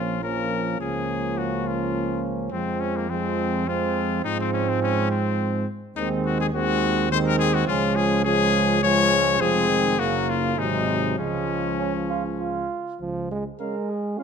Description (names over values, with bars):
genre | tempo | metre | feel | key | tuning
classical, brass quintet | 104 BPM | 3/4 | rubato | Db major from 6.0 s | A4 = 438 Hz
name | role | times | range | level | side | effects
clear trumpet | melody | 0.0-14.2 s | Bb3 to F5 | -25 LUFS | left 8 dB | none
mellow flugelhorn | second line | 0.0-14.2 s | Ab3 to Bb4 | -28 LUFS | right 8 dB | none
clear trombone | accompaniment | 0.0-14.2 s | C3 to Db4 | -30 LUFS | right 3 dB | none
mellow French horn | accompaniment | 0.0-14.2 s | F3 to Db4 | -29 LUFS | left 5 dB | none
dark tuba | bass | 0.0-13.5 s | F1 to Ab2 | -28 LUFS | right 4 dB | none
room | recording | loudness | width
moderate recital hall reverb, RT60 1.5 s | close, detailed microphones | -21 LUFS | side -6 dB against mid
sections
0.0-13.0 A section; 13.0-14.2 B section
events
none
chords
0.0 Bbm; 0.8 Bbm/Db; 2.5 Fm; 4.2 Fm/Ab; 6.0 Ab7/Eb; 7.7 Db; 9.4 Fm; 10.0 Gb; 10.6 Ab7; 11.2 Db